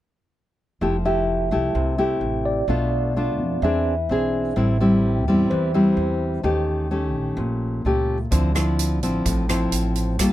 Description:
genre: bossa nova.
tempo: 128 BPM.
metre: 4/4.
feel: straight.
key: F major.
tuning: A4 = 438 Hz.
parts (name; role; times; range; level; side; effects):
nylon-string guitar; accompaniment; 0.8-10.3 s; A2 to A4; -21 LUFS; left 1 dB; none.
upright bass; bass; 0.8-10.3 s; F1 to F2; -25 LUFS; right 1 dB; none.
tine electric piano; accompaniment; 1.1-6.6 s; C5 to E5; -27 LUFS; right 1 dB; medium stereo tremolo.
swinging big-band drum kit; drums; 8.3-10.3 s; hi-hat, kick drum, rim click; -26 LUFS; right 1 dB; none.
room: light reverb.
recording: close, detailed microphones.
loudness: -19 LUFS.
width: side -14 dB against mid.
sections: 0.8-10.3 A section.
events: none.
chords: 0.8 Fmaj9; 2.7 Bm7b5; 3.6 E7b13; 4.6 Am7; 6.4 Eb7#11; 8.3 Dm9.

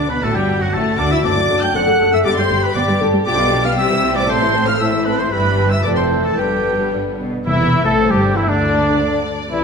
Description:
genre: quick classical-period movement for symphony orchestra.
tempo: 117 BPM.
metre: 2/4.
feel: rubato.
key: G major, C major from 3.3 s.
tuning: A4 = 439 Hz.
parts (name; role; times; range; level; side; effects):
rich studio violin section; melody; 0.0-9.6 s; D4 to G6; -24 LUFS; left 2 dB; none.
clear oboe; second line; 0.0-9.3 s; D4 to G5; -22 LUFS; right 1 dB; none.
dark studio violin section; second line; 0.0-9.6 s; G3 to E5; -25 LUFS; left 3 dB; none.
small flute group; second line; 0.0-9.3 s; D4 to G5; -24 LUFS; right 2 dB; none.
warm studio viola section; accompaniment; 0.0-9.6 s; D3 to G4; -23 LUFS; right 1 dB; none.
dark French horn section; sustained chords; 0.0-9.6 s; D3 to B4; -21 LUFS; left 3 dB; none.
warm studio double bass section; bass; 0.0-9.6 s; E1 to D2; -24 LUFS; right 2 dB; none.
warm symphonic cello section; bass; 0.0-9.6 s; D2 to E3; -23 LUFS; right 1 dB; none.
clear trumpet; stabs; 7.5-9.6 s; D4 to A4; -19 LUFS; equal; none.
timpani; percussion; 7.5-8.2 s; C3; -24 LUFS; left 1 dB; none.
room: wet recital hall reverb, RT60 1.8 s.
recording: minimal, uncompressed stereo recording.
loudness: -14 LUFS.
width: side -5 dB against mid.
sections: 0.0-7.5 A section; 7.5-9.6 B section.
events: none.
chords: 0.2 D; 1.2 D/F#; 2.3 G; 3.3 G7/B; 3.8 C; 4.3 Am; 5.3 Em/G; 5.8 F; 6.4 G; 7.5 C/E; 8.5 N.C..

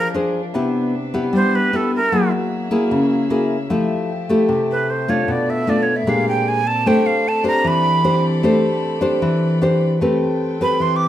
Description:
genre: bossa nova.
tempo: 152 BPM.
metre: 4/4.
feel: straight.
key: A minor.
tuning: A4 = 440 Hz.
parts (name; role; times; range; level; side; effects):
breathy bright jazz flute; melody; 0.0-2.3, 4.7-8.3, 10.6-11.1 s; A4 to D6; -19 LUFS; right 3 dB; none.
nylon-string guitar; accompaniment; 0.0-11.1 s; Bb2 to C5; -17 LUFS; left 1 dB; none.
warm studio string section; sustained chords; 0.0-11.1 s; A3 to B5; -30 LUFS; right 1 dB; none.
room: wet large studio reverb, RT60 1.1 s.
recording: minimal, uncompressed stereo recording.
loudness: -16 LUFS.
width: side -12 dB against mid.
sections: 0.0-10.0 A section; 10.0-11.1 A section.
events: flute solo 0.0-11.1.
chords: 0.0 Bb9; 0.5 Cmaj7; 2.1 F#9; 3.7 Fmaj9; 5.3 Bm7b5; 6.1 Bb13; 6.9 Am11; 10.0 Am9.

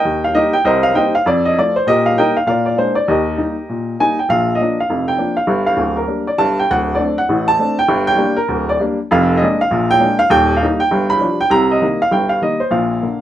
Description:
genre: jazz, stride piano.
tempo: 199 BPM.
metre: 4/4.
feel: swing 63% on 8ths.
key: Eb major.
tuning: A4 = 439 Hz.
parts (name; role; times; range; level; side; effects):
warm upright piano; solo; 0.0-13.2 s; D1 to B5; -13 LUFS; equal; none.
room: moderate small room reverb, RT60 0.5 s.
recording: band playing live in one room.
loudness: -13 LUFS.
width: side -12 dB against mid.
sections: 0.0-4.3 A section; 4.3-13.2 B section.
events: none.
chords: 0.0 Eb; 0.7 Cm7; 1.3 F; 1.9 Eb/Bb; 2.5 Bb7; 3.1 Eb; 4.3 Bb; 5.5 Gm7; 6.7 D7; 7.9 Gm; 9.1 Bb7/F; 9.7 Bb7; 10.3 Eb; 10.9 G7; 11.5 Cm7.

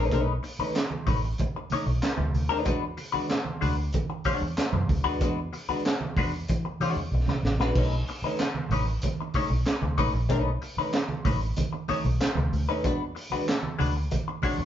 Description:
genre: funk.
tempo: 94 BPM.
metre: 4/4.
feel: straight.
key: unclear.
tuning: A4 = 439 Hz.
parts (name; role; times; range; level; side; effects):
vintage hollow-body jazz guitar; accompaniment; 0.0-14.6 s; G#3 to C#5; -30 LUFS; left 3 dB; wah.
vintage muted fingered electric bass; bass; 0.0-14.7 s; A1 to E3; -28 LUFS; equal; none.
crunchy breakbeat drum kit; drums; 0.1-14.6 s; crash cymbal, handclaps, hi-hat, kick drum, snare drum; -30 LUFS; right 1 dB; none.
congas; percussion; 0.6-14.6 s; none; -34 LUFS; right 4 dB; none.
room: moderate studio reverb, RT60 0.8 s.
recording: band playing live in one room, nothing above 7.5 kHz.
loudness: -25 LUFS.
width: side -10 dB against mid.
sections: 0.0-7.8 A section; 7.8-14.7 B section.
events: drum fill 7.1-7.8.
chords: 0.0 B9; 2.7 E9; 7.8 B9; 12.8 E9.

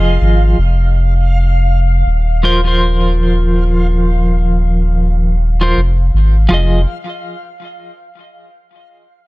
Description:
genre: trip hop.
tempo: 81 BPM.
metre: 4/4.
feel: swing 58% on 16ths.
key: F minor.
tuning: A4 = 440 Hz.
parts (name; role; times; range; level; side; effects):
clean electric guitar; accompaniment; 0.0-6.8 s; F3 to Eb5; -17 LUFS; equal; tremolo, tape echo.
round analog bass; bass; 0.0-6.9 s; Eb1 to Ab1; -12 LUFS; equal; none.
backwards swelling texture; texture; 0.0-6.5 s; F5; -26 LUFS; equal; built-in reverb.
room: digital ambience.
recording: none.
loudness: -11 LUFS.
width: side -20 dB against mid.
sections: 0.0-6.5 A section; 6.5-9.3 B section.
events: none.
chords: 0.0 Fm7; 0.6 Ab6 (rootless); 6.5 Fm7.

